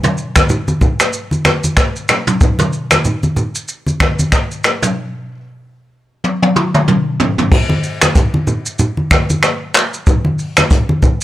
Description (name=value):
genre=afrobeats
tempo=94 BPM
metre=4/4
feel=swing 58% on 16ths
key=none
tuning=none
part: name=jazz brush drum kit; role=drums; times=0.0-11.2 s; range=crash cymbal, finger snaps, handclaps, hi-hat, kick drum, rim click, shaker, toms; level=-13 LUFS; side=equal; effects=none
part: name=congas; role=percussion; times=0.0-11.2 s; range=none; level=-16 LUFS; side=equal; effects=none
room=small room ambience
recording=none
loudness=-12 LUFS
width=side -14 dB against mid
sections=0.0-7.5 A section; 7.5-11.2 B section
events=drums muted 5.0-7.5; drum fill 6.2-7.5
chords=none